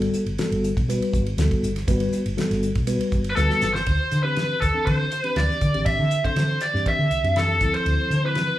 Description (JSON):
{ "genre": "electric jazz fusion", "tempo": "120 BPM", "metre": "4/4", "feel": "straight", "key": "unclear", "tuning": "A4 = 440 Hz", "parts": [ { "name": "mellow tine electric piano", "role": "accompaniment", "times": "0.0-8.6 s", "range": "E3 to B4", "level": "-26 LUFS", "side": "left 1 dB", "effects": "medium stereo tremolo" }, { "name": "woody fretless electric bass", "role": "bass", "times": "0.0-8.5 s", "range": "G1 to D3", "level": "-24 LUFS", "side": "equal", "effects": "none" }, { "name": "damped 70s drum kit", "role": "drums", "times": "0.0-8.5 s", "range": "hi-hat, kick drum, ride cymbal, snare drum", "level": "-28 LUFS", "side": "equal", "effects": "none" }, { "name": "biting lead guitar", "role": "melody", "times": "3.3-8.6 s", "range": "A4 to E5", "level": "-22 LUFS", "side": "equal", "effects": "overdrive" } ], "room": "wet large studio reverb, RT60 0.8 s", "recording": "band playing live in one room", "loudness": "-20 LUFS", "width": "side -14 dB against mid", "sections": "0.0-3.9 A section; 3.9-8.6 B section", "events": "drum fill 3.4-3.9", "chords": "0.0 Gmaj9; 3.9 D9sus4; 7.6 Fmaj7/D" }